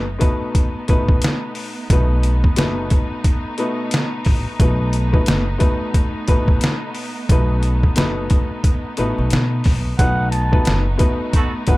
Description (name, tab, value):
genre	hip hop, boom-bap hip-hop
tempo	89 BPM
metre	4/4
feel	swing 58% on 16ths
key	unclear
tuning	A4 = 439 Hz
part	warm upright piano	accompaniment	0.0-11.8 s	B2 to B4	-23 LUFS	left 2 dB	high-pass filter, low-pass filter
part	clear studio string section	sustained chords	0.0-11.8 s	A3 to D#4	-31 LUFS	right 1 dB	high-pass filter, low-pass filter
part	upright bass	bass	0.0-11.8 s	F#1 to B2	-20 LUFS	equal	none
part	trip hop sampler-style drum kit	drums	0.2-11.8 s	hi-hat, kick drum, snare drum	-17 LUFS	equal	none
part	trumpet with cup mute	melody	10.0-11.8 s	F#5 to A5	-24 LUFS	right 1 dB	high-pass filter, low-pass filter, tape echo, plate reverb
part	clear horn section	stabs	11.4-11.5 s	A3 to A4	-26 LUFS	right 4 dB	high-pass filter, low-pass filter
room	light reverb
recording	none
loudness	-16 LUFS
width	side -20 dB against mid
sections	0.0-10.0 A section; 10.0-11.8 B section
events	none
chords	0.0 B7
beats	0.55 1.23 | 1.90 2.57 3.25 3.92 | 4.60 5.27 5.95 6.62 | 7.29 7.97 8.64 9.32 | 9.99 10.66 11.34